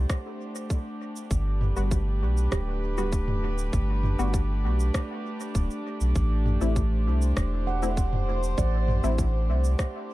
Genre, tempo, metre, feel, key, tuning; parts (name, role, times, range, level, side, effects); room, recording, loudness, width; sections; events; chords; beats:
ambient dub; 99 BPM; 4/4; straight; A dorian; A4 = 440 Hz
dark chamber string section; sustained chords; 0.0-10.1 s; A3 to C5; -33 LUFS; equal
handpan; arpeggios; 0.0-3.8, 7.7-9.9 s; G4 to F#5; -38 LUFS; right 8 dB; dub echo
soft dub sub bass; bass; 0.0-9.8 s; D1 to C2; -25 LUFS; equal
electronic kick drum; drums; 0.1-9.9 s; -26 LUFS; equal; overdrive
organic electronic drum kit; drums; 0.1-9.9 s; cabasa, rim click, toms; -34 LUFS; equal; overdrive, dub echo
filtered dub chord stab; stabs; 1.8-9.2 s; G3 to F#4; -36 LUFS; left 3 dB; analog chorus, dub echo
digital ambience; dark, warm production; -24 LUFS; side -17 dB against mid
0.0-10.1 A section
0.0 Am; 1.3 Gmaj7; 6.2 Am
0.10 0.70 | 1.31 1.91 2.52 3.13 | 3.73 4.34 4.95 5.55 | 6.16 6.76 7.37 7.97 | 8.58 9.19 9.79